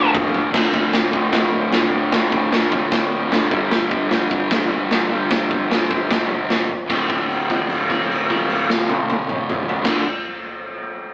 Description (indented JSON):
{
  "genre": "garage rock duo or trio",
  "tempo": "151 BPM",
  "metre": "4/4",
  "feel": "straight",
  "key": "unclear",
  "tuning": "A4 = 440 Hz",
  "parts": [
    { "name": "fuzz guitar", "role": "riff", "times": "0.0-10.0 s", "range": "D2 to G3", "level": "-20 LUFS", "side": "equal", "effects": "distortion" },
    { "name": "raw garage drum kit", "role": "drums", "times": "0.1-9.9 s", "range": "crash cymbal, kick drum, snare drum, toms", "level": "-19 LUFS", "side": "equal", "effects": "none" }
  ],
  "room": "moderate studio ambience, RT60 0.5 s",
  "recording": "rough rehearsal-room recording, AM radio sound",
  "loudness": "-16 LUFS",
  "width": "side -23 dB against mid",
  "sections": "0.5-6.9 A section; 6.9-10.1 B section",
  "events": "drum fill 0.0-0.5; held note 6.9-9.8",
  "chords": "0.0 D5; 3.5 G5; 6.9 D5",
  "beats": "0.14 | 0.53 0.93 1.32 1.72 | 2.11 2.51 2.91 3.31 | 3.70 4.10 4.50 4.90 | 5.30 5.70 6.09 6.49 | 6.89 7.29 7.69 8.09 | 8.49 8.89 9.29 9.68"
}